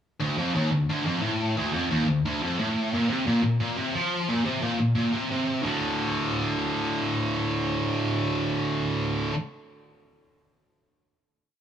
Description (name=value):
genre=metal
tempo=177 BPM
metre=4/4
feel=straight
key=D minor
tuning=A4 = 440 Hz
part: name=high-gain distorted guitar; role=solo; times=0.2-9.3 s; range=D2 to F3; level=-24 LUFS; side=equal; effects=distortion
room=light reverb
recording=small room ambience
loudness=-24 LUFS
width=side -9 dB against mid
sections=0.2-5.6 riff; 5.6-8.3 final chord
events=none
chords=0.2 Dm; 2.9 Bb5; 5.6 D5